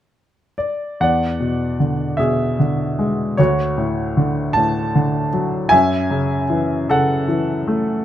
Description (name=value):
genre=classical, lyrical solo piano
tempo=51 BPM (dotted quarters)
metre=6/8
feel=rubato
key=F# minor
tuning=A4 = 440 Hz
part: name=clear upright piano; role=solo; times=0.6-8.0 s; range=D2 to A5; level=-16 LUFS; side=equal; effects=none
room=light reverb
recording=close, detailed microphones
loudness=-16 LUFS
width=side -11 dB against mid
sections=0.0-1.0 A section; 1.0-8.0 B section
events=none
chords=0.0 N.C.; 1.0 E9; 3.4 Dmaj7; 5.7 F#m9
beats=| 1.00 2.20 | 3.39 4.56 | 5.73 6.89